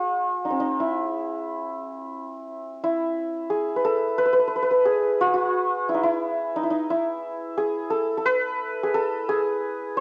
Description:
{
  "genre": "persian",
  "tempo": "59 BPM (dotted quarters)",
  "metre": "6/8",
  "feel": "straight",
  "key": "E dastgah chahargah",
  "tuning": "A4 = 440 Hz",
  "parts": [
    { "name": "santur", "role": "solo", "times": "0.0-10.0 s", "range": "C4+45c to C5+45c", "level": "-25 LUFS", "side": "equal", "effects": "cassette tape" }
  ],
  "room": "light reverb, studio ambience",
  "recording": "home recording on cassette",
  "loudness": "-24 LUFS",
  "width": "mono",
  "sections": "0.0-2.8 A section; 2.8-10.0 B section",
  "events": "none",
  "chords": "none",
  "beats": "| 0.78 1.80 | 2.82 3.83 | 4.85 5.87 | 6.89 7.91 | 8.92 9.94"
}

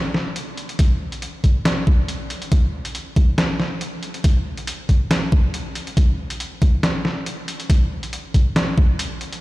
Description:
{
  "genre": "dubstep",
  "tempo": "139 BPM",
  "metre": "4/4",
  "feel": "swing 54% on 16ths, half-time",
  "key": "none",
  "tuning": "none",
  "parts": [
    { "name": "trip hop sampler-style drum kit", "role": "drums", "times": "0.1-9.4 s", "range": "hi-hat, snare drum", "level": "-24 LUFS", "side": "equal", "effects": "none" },
    { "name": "electronic kick drum", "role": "drums", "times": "0.8-8.9 s", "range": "none", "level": "-15 LUFS", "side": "equal", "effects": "overdrive" }
  ],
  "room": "light reverb",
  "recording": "played on a big sound system in a bare room, stone room reverb",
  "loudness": "-18 LUFS",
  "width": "side -18 dB against mid",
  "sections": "0.0-9.4 A section",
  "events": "none",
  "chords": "none",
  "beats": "0.36 | 0.79 1.22 1.65 2.09 | 2.52 2.95 3.38 3.81 | 4.24 4.68 5.11 5.54 | 5.97 6.40 6.83 7.27 | 7.70 8.13 8.56 8.99"
}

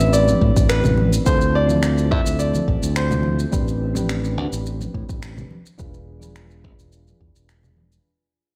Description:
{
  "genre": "sunset chillout",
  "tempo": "106 BPM",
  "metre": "4/4",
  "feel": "straight",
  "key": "A minor",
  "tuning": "A4 = 436 Hz",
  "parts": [
    { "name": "warm grand piano", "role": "melody", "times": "0.0-3.4 s", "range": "B4 to E5", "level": "-25 LUFS", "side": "equal", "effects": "tape echo" },
    { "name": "soft electric-piano-like synth keys", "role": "accompaniment", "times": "0.0-8.1 s", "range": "C4 to B4", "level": "-29 LUFS", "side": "equal", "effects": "chorus, delay" },
    { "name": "modern bright fingered electric bass", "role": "bass", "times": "0.0-8.0 s", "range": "E1 to A2", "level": "-23 LUFS", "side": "equal", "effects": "none" },
    { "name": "electronic shaker and finger snaps", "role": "drums", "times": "0.0-8.0 s", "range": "none", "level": "-32 LUFS", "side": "equal", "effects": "none" },
    { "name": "congas", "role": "percussion", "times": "0.3-7.9 s", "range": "none", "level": "-30 LUFS", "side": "equal", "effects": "none" },
    { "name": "electronic kick drum", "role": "drums", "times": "0.4-7.3 s", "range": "none", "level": "-23 LUFS", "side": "equal", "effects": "none" }
  ],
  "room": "light reverb, digital ambience",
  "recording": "played on a big sound system in a bare room, large studio reverb",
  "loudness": "-19 LUFS",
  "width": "mono",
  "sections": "0.0-8.1 A section",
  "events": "fade-out 0.0-8.1",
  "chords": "0.0 Am11; 1.3 Dm9; 3.5 Am11; 5.5 E7b9",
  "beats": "0.13 0.69 | 1.26 1.83 2.39 2.96 | 3.52 4.09 4.66 5.22 | 5.79 6.36 6.92 7.49"
}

